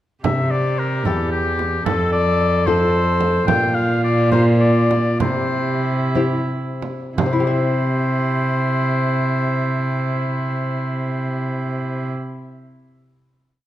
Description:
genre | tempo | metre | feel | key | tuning
classical, renaissance-style consort dance | 56-75 BPM (dotted quarters) | 6/8 | straight | C mixolydian | A4 = 441 Hz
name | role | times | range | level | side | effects
clear oboe | melody | 0.2-12.1 s | G4 to G5 | -23 LUFS | left 4 dB | none
rich viola | second line | 0.2-12.1 s | E4 to A4 | -25 LUFS | right 3 dB | none
lute | accompaniment | 0.2-12.4 s | E2 to E5 | -25 LUFS | left 4 dB | none
rich cello | bass | 0.2-12.1 s | E2 to C3 | -20 LUFS | right 1 dB | none
frame drum | percussion | 0.2-7.5 s | none | -26 LUFS | right 4 dB | none
room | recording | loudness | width
wet recital hall reverb, RT60 1.6 s | dark, warm production | -17 LUFS | side -13 dB against mid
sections
0.2-7.2 A section; 7.2-11.4 final chord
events
slowing down 2.7-7.2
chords
0.2 C; 1.9 F; 3.5 Bb; 5.2 C

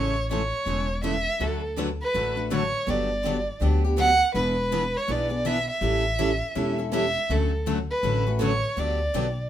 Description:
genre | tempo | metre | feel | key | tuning
acoustic string swing (jazz manouche) | 163 BPM | 4/4 | swing 61% on 8ths | D major | A4 = 440 Hz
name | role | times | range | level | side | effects
warm violin | melody | 0.0-9.5 s | A4 to F#5 | -26 LUFS | right 2 dB | none
picked steel-string acoustic guitar | accompaniment | 0.0-9.3 s | C#3 to B4 | -30 LUFS | left 4 dB | none
picked steel-string acoustic guitar | accompaniment | 0.0-9.3 s | D3 to B4 | -33 LUFS | right 6 dB | none
upright bass | bass | 0.0-9.5 s | E1 to D2 | -28 LUFS | equal | none
room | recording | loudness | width
moderate studio reverb, RT60 0.6 s | minimal, uncompressed stereo recording | -22 LUFS | side -11 dB against mid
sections
0.0-1.4 A section; 1.4-9.5 B section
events
none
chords
0.0 Amaj7; 1.4 D6; 2.9 Gmaj7; 4.3 E7; 5.8 A7; 7.3 Dmaj7; 8.8 Gmaj7

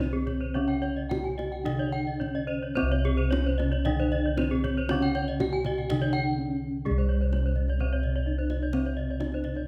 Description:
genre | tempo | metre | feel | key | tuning
Balinese gamelan | 108-127 BPM | 4/4 | straight | C pelog | A4 = 439 Hz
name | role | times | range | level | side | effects
gamelan-type bronze metallophone | melody | 0.0-9.7 s | Ab3-40c to G4-45c | -33 LUFS | equal | none
gamelan-type bronze metallophone | accompaniment | 0.0-9.7 s | C3 to Ab3-40c | -39 LUFS | equal | none
gamelan-type bronze metallophone | arpeggios | 0.0-9.6 s | Ab4-40c to G5-45c | -39 LUFS | equal | none
gamelan-type bossed gongs | bass | 0.0-9.7 s | C2 to Ab4-40c | -31 LUFS | equal | none
gamelan-type bronze metallophone | arpeggios | 0.1-9.7 s | Ab4-40c to Ab5-40c | -38 LUFS | equal | none
kendang | percussion | 0.3-9.6 s | none | -40 LUFS | equal | none
room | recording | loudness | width
moderate recital hall reverb, RT60 1.4 s | none | -28 LUFS | mono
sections
0.0-6.9 A section; 6.9-9.7 B section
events
break 6.1-6.9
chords
none

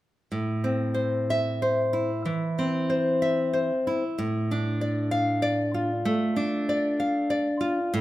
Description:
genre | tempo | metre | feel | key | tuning
romantic piece for solo classical guitar | 63 BPM | 4/4 | rubato | A minor | A4 = 440 Hz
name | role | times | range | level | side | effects
nylon-string guitar | solo | 0.3-8.0 s | A2 to F5 | -24 LUFS | equal | none
room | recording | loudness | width
moderate recital hall reverb, RT60 1.4 s | minimal, uncompressed stereo recording | -24 LUFS | side -15 dB against mid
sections
0.3-8.0 A section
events
none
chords
0.3 Am; 4.2 Dm/A

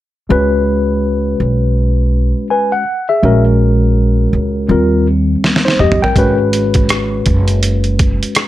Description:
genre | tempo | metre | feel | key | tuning
hip hop, jazz-hop | 82 BPM | 4/4 | swing 59% on 16ths | unclear | A4 = 440 Hz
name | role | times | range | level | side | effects
tine electric piano | accompaniment | 0.3-8.5 s | G3 to G#5 | -14 LUFS | left 1 dB | medium stereo tremolo
upright bass | bass | 0.3-8.2 s | F#1 to E#2 | -14 LUFS | right 1 dB | none
trip hop sampler-style drum kit | drums | 5.4-8.5 s | hi-hat, kick drum, rim click, snare drum, toms | -14 LUFS | right 1 dB | none
room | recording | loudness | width
light reverb | none | -11 LUFS | side -14 dB against mid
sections
0.3-8.5 A section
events
drum fill 5.4-6.2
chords
0.3 C#5; 3.2 F#9/A#; 4.7 D#; 6.2 G#m7

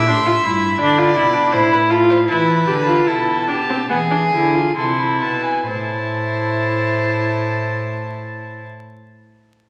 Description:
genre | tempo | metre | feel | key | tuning
classical, baroque-style fugue for string quartet | 64-86 BPM | 4/4 | straight | A minor | A4 = 440 Hz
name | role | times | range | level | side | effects
dark violin | melody | 0.0-8.7 s | G#5 to C6 | -24 LUFS | equal | none
rich violin | second line | 0.0-8.7 s | G4 to E5 | -24 LUFS | equal | none
warm viola | accompaniment | 0.0-8.7 s | B3 to G4 | -21 LUFS | equal | none
rich cello | bass | 0.0-8.7 s | G2 to E3 | -26 LUFS | equal | none
room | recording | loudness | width
wet recital hall reverb, RT60 1.8 s | vinyl crackle | -17 LUFS | mono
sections
0.0-5.7 A section; 5.7-9.4 B section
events
slowing down 0.0-5.7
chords
0.0 C7; 0.8 Dm; 2.3 E7sus4; 3.9 E7; 5.7 Am

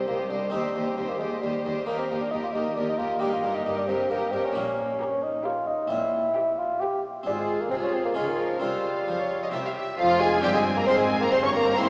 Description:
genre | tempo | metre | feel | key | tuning
classical, baroque-style concerto movement with solo episodes | 133 BPM | 3/4 | straight | F minor from 4.6 s | A4 = 440 Hz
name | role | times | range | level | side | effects
rich chamber violin section | melody | 0.0-11.9 s | C5 to Db6 | -36 LUFS | equal | none
warm bassoon | melody | 0.0-11.9 s | Eb3 to G4 | -29 LUFS | equal | none
rich chamber violin section | second line | 0.0-11.9 s | F4 to F5 | -34 LUFS | equal | none
harpsichord | accompaniment | 0.0-11.9 s | C2 to F4 | -35 LUFS | equal | none
rich studio viola section | accompaniment | 0.0-11.9 s | C4 to G4 | -35 LUFS | equal | none
rich chamber double bass section | bass | 0.1-11.9 s | F1 to F2 | -43 LUFS | equal | none
warm chamber cello section | bass | 0.1-11.9 s | C2 to F3 | -41 LUFS | equal | none
room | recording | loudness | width
wet church reverb, RT60 3.5 s | recorded in a church or concert hall, small speaker sound | -26 LUFS | mono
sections
0.0-10.0 A section; 10.0-11.9 B section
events
none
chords
0.0 Cm; 0.5 Cm/Eb; 1.9 Eb; 3.2 Eb/G; 4.6 Gdim/Bb; 5.9 C7/Bb; 7.3 Fm/Ab; 8.2 Db; 8.6 Csus4; 9.5 C; 10.0 Fm; 11.3 C7/G

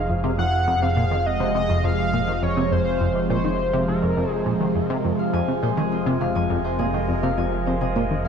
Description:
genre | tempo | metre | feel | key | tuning
ambient | 103 BPM | 4/4 | straight | F minor | A4 = 439 Hz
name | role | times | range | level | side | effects
pulse-width lead | melody | 0.0-4.9 s | Ab4 to Gb5 | -26 LUFS | left 1 dB | chorus, shimmer reverb, analog delay
phased analog pad | sustained chords | 0.0-8.3 s | C3 to Bb4 | -25 LUFS | right 1 dB | phaser, chorus
fat analog bass | bass | 0.0-8.3 s | F1 | -28 LUFS | equal | none
tight sequenced synth | riff | 0.1-8.2 s | F2 to Eb3 | -25 LUFS | equal | chorus, analog delay
Celtic harp | arpeggios | 5.2-8.3 s | F4 to Ab5 | -28 LUFS | right 1 dB | auto-pan, shimmer reverb, analog delay
room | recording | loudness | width
wet spring reverb, RT60 2.4 s | echo-heavy mix, cassette tape | -20 LUFS | side -7 dB against mid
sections
0.0-8.3 A section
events
none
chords
0.0 Fm

